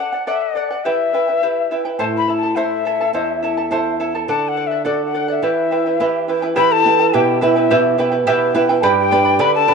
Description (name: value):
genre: andean folk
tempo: 105 BPM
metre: 2/4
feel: straight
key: E minor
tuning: A4 = 442 Hz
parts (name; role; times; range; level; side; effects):
- breathy mellow quena; melody; 0.0-9.7 s; D5 to B5; -19 LUFS; left 8 dB; none
- charango; accompaniment; 0.0-9.7 s; E4 to B5; -18 LUFS; right 3 dB; none
- flamenco guitar; accompaniment; 2.0-9.7 s; E2 to C5; -22 LUFS; right 2 dB; none
- mellow hollow large quena; second line; 6.6-9.7 s; E4 to B4; -21 LUFS; right 14 dB; none
room: moderate plate reverb, RT60 2.5 s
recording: 1960s-style stereo with parts hard left and right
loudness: -14 LUFS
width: side -5 dB against mid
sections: 0.0-6.6 A section; 6.6-9.7 B section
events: none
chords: 0.0 D; 0.8 Em; 2.0 Am; 4.3 D; 5.4 Em; 8.8 G